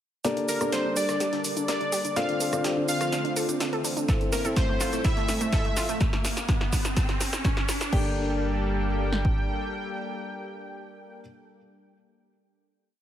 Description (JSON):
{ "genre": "progressive house", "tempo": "125 BPM", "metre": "4/4", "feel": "straight", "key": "G dorian", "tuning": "A4 = 440 Hz", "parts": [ { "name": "lush unison pad", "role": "sustained chords", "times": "0.2-11.2 s", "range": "D3 to A4", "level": "-34 LUFS", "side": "equal", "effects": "chorus, sidechain pumping" }, { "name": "wide unison pluck", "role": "arpeggios", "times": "0.2-11.2 s", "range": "A3 to Bb4", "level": "-33 LUFS", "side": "right 1 dB", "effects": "sidechain pumping, tape echo" }, { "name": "felt-muted upright piano", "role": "stabs", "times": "0.2-11.2 s", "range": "Bb3 to D5", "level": "-32 LUFS", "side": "left 2 dB", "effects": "sidechain pumping, low-pass filter, tape echo" }, { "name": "breakbeat sampler-style drum kit", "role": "drums", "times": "0.2-5.9 s", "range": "hi-hat, snare drum", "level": "-39 LUFS", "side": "equal", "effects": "none" }, { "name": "house drum kit", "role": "drums", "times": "0.2-8.0 s", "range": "cabasa, crash cymbal, hi-hat, rim click, snare drum", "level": "-32 LUFS", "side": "right 1 dB", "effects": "high-pass filter on snare, studio reverb, sidechain pumping on hats, high-pass filter on hats, sidechain pumping on perc, high-pass filter on perc, sidechain pumping on cymbals, high-pass filter on cymbals" }, { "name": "riser", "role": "sound effects", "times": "2.5-7.9 s", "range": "none", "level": "-37 LUFS", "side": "equal", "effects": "none" }, { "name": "plucky unison lead", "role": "melody", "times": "0.5-11.2 s", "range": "Bb4 to G5", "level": "-32 LUFS", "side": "equal", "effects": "tape echo" }, { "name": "round analog bass", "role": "bass", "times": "0.5-9.3 s", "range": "G1 to D2", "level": "-31 LUFS", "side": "equal", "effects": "tube saturation, sidechain pumping, high-pass filter" }, { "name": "house drum kit", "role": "drums", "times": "4.1-9.4 s", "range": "kick drum, snare drum", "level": "-26 LUFS", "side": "equal", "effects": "studio reverb" } ], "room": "light reverb, digital ambience", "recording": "none", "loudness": "-24 LUFS", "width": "side -11 dB against mid", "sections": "0.2-7.9 build; 7.9-11.8 final chord", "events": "build-up 0.2-7.9; drum fill 0.2-7.9; filter sweep on synth pluck 0.2-6.0; filter sweep on felt piano 0.2-6.0; filter sweep on analog synth pad 0.2-6.0; riser 2.5-7.9", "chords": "0.2 Gmadd9; 2.2 Dm7; 4.1 Am; 6.0 N.C.; 7.9 Gmadd9", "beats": "| 0.24 0.72 1.21 1.69 | 2.17 2.65 3.12 3.60 | 4.08 4.57 5.04 5.53 | 6.00 6.49 6.96 7.45 | 7.92 8.40 8.88 9.37 | 9.85 10.32 10.80" }